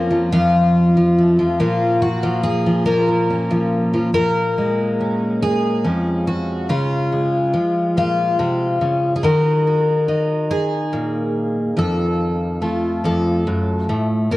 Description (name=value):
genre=folk, solo fingerstyle acoustic guitar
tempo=47 BPM (dotted quarters)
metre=6/8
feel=straight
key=Bb minor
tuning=A4 = 436 Hz
part: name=picked twelve-string acoustic guitar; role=solo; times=0.0-14.4 s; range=F2 to Bb4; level=-16 LUFS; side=equal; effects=none
room=little or no reverb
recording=dry, close 1970s-style studio recording, lossy compression artefacts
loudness=-16 LUFS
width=side -17 dB against mid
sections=0.0-4.1 A section; 4.1-14.4 B section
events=none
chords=0.3 F; 1.6 Bbm; 4.1 Bbm7; 6.7 Db; 9.2 Ebm; 11.8 F7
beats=0.33 | 1.60 2.87 | 4.14 5.41 | 6.68 7.96 | 9.23 10.50 | 11.77 13.04 | 14.31